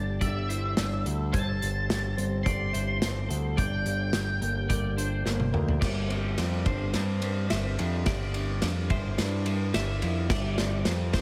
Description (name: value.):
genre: post-rock.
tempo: 107 BPM.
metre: 4/4.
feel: straight.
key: unclear.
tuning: A4 = 440 Hz.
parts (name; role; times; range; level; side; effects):
octave-fuzz lead guitar; melody; 0.0-5.2 s; E5 to C6; -37 LUFS; equal; distortion, analog delay.
twelve-string electric guitar; arpeggios; 0.0-11.2 s; G2 to Bb4; -36 LUFS; equal; analog chorus, analog delay.
growling picked electric bass; bass; 0.0-11.2 s; G1 to G2; -32 LUFS; equal; overdrive.
twelve-string electric guitar; arpeggios; 0.2-11.2 s; C5 to E5; -42 LUFS; equal; analog chorus, analog delay.
loose indie drum kit; drums; 0.2-11.2 s; crash cymbal, hi-hat, kick drum, ride cymbal, snare drum, toms; -33 LUFS; equal; none.
room: moderate lush hall reverb, RT60 2.7 s.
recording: dreamy mix soaked in reverb.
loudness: -28 LUFS.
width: mono.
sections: 0.0-5.8 A section; 5.8-11.2 B section.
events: drum fill 5.3-5.8, 5.8-11.2; build-up 5.8-11.2.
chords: 0.0 Dsus2/G; 3.6 Gm; 5.8 Dm11/G.